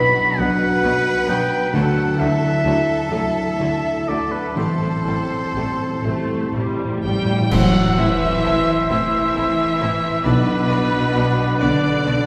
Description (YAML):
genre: cinematic, emotional film score for orchestra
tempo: 40-45 BPM (dotted quarters)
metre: 6/8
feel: rubato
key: A dorian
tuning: A4 = 440 Hz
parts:
  - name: rich studio violin section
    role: melody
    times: 0.0-12.3 s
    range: C4 to G5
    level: -29 LUFS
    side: equal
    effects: none
  - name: clear oboe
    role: second line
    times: 0.0-12.3 s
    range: B4 to B5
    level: -26 LUFS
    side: equal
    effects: none
  - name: clear studio violin section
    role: second line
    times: 0.0-12.1 s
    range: F#4 to D5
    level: -33 LUFS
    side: equal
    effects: none
  - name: felt-muted upright piano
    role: accompaniment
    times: 0.0-12.3 s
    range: A1 to C5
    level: -27 LUFS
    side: equal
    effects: none
  - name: rich studio viola section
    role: accompaniment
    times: 0.0-12.1 s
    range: F#3 to E4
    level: -32 LUFS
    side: equal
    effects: none
  - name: dark French horn section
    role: sustained chords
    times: 0.0-12.3 s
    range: B2 to B4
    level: -29 LUFS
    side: equal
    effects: none
  - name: concert harp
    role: arpeggios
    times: 0.0-12.3 s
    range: A2 to B4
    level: -31 LUFS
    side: equal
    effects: none
  - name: clear studio cello section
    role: bass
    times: 0.0-12.3 s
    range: A2 to G3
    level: -28 LUFS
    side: equal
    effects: none
  - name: rich studio double bass section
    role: bass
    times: 0.0-12.2 s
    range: A1 to D2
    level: -30 LUFS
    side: equal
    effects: none
  - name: cymbal swell, clash cymbals and concert bass drum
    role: percussion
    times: 4.6-9.3 s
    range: none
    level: -31 LUFS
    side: equal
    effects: none
  - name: timpani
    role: percussion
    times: 4.6-8.9 s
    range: A2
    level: -28 LUFS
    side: equal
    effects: none
  - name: mellow hollow silver concert flute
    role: second line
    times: 7.5-12.3 s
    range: E6 to F#6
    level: -27 LUFS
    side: equal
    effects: none
  - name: warm clarinet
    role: second line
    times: 7.5-12.3 s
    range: D4 to E4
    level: -30 LUFS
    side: equal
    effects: none
room: wet church reverb, RT60 2.8 s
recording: recorded in a church or concert hall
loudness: -19 LUFS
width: mono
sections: 0.0-7.5 A section; 7.5-12.3 B section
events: timpani fill 4.6-7.5; band accent 7.5-8.4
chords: 0.0 Bm; 1.7 Dadd9; 4.6 Am7; 7.5 Am; 10.2 Bm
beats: 0.40 | 1.74 3.12 | 4.57 6.04 | 7.51 8.90 | 10.24 11.60